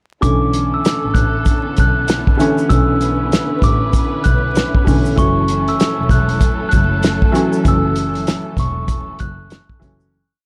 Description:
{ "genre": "hip hop, boom-bap hip-hop", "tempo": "97 BPM", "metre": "4/4", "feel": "swing 61% on 16ths", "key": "B minor", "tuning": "A4 = 440 Hz", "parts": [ { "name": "glockenspiel with rubber mallets", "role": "melody", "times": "0.2-10.1 s", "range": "C#6 to F#6", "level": "-24 LUFS", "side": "equal", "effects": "high-pass filter, low-pass filter" }, { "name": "warm upright piano", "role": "accompaniment", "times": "0.2-10.1 s", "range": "D3 to C#4", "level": "-22 LUFS", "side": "equal", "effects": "cassette tape, high-pass filter, low-pass filter" }, { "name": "warm studio string section", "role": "sustained chords", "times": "0.2-10.1 s", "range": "D3 to B4", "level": "-27 LUFS", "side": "equal", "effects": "high-pass filter, low-pass filter" }, { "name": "dark double bass", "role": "bass", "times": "0.2-10.0 s", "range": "E1 to B1", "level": "-22 LUFS", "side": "equal", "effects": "tube saturation" }, { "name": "warm soul drum kit", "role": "drums", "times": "0.2-10.0 s", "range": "hi-hat, kick drum, snare drum", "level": "-19 LUFS", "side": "equal", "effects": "none" }, { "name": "egg shaker", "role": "percussion", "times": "0.2-10.1 s", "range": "none", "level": "-41 LUFS", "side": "equal", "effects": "none" } ], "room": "little or no reverb", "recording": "transformer saturation, vinyl crackle", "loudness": "-16 LUFS", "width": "mono", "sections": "0.2-10.1 hook", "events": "fade-out 7.7-10.1", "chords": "0.2 Bm11; 5.2 F#m7", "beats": "| 0.23 0.85 1.47 2.08 | 2.70 3.32 3.94 4.56 | 5.18 5.80 6.42 7.03 | 7.65 8.27 8.89 9.51" }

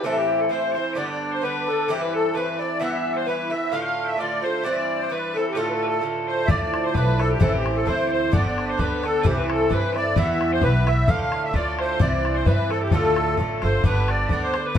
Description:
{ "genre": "celtic folk, Celtic polka", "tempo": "131 BPM", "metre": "2/4", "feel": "swing 54% on 8ths", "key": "D dorian", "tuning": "A4 = 442 Hz", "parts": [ { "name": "musette accordion", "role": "melody", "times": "0.0-14.8 s", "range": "G4 to F5", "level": "-25 LUFS", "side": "equal", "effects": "plate reverb, tape echo" }, { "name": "loud bright bagpipes", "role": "second line", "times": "0.0-14.8 s", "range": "G4 to G5", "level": "-32 LUFS", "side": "left 5 dB", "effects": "none" }, { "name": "Irish bouzouki", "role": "accompaniment", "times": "0.0-14.8 s", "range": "G2 to F4", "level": "-25 LUFS", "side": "right 1 dB", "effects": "none" }, { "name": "upright bass", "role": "bass", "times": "6.5-14.8 s", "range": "G1 to G2", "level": "-24 LUFS", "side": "equal", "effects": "none" }, { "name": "bodhran", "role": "percussion", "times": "6.5-14.8 s", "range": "none", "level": "-24 LUFS", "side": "left 2 dB", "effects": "none" } ], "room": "wet studio reverb, RT60 0.5 s", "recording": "heard from further back in the room", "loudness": "-20 LUFS", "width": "side -9 dB against mid", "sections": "0.0-6.5 A section; 6.5-13.8 A section", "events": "none", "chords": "0.0 Am; 1.0 G; 1.9 C; 2.8 Em; 3.7 Dm; 4.7 C; 5.6 Dm; 6.5 Dmadd9; 7.4 Am; 8.3 G; 9.2 C; 10.2 Em; 11.1 Dm; 12.0 C; 12.9 Dm; 13.8 G", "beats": "| 0.04 0.51 | 0.96 1.43 | 1.89 2.35 | 2.81 3.27 | 3.73 4.19 | 4.65 5.11 | 5.57 6.03 | 6.49 6.95 | 7.41 7.87 | 8.33 8.79 | 9.25 9.71 | 10.17 10.62 | 11.08 11.54 | 12.00 12.46 | 12.92 13.38 | 13.84 14.30 | 14.76" }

